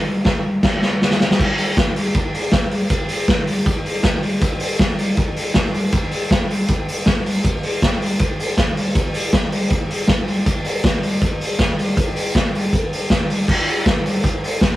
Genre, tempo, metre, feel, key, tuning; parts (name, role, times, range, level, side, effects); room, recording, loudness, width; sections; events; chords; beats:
indie pop; 159 BPM; 4/4; straight
vintage drum kit; drums; 0.2-14.7 s; crash cymbal, hi-hat, kick drum, ride cymbal, snare drum; -16 LUFS; equal
light reverb; rough rehearsal-room recording, warm saturation; -16 LUFS; side -16 dB against mid
0.0-1.4 A section; 1.4-13.5 B section; 13.5-14.8 B section
band accent 0.0-1.4; drum fill 0.6-1.4
0.26 0.64 1.01 | 1.39 1.77 2.15 2.53 | 2.90 3.28 3.66 4.04 | 4.42 4.79 5.17 5.55 | 5.93 6.31 6.68 7.06 | 7.44 7.82 8.20 8.57 | 8.95 9.33 9.71 10.09 | 10.46 10.84 11.22 11.60 | 11.97 12.35 12.73 13.11 | 13.48 13.86 14.24 14.62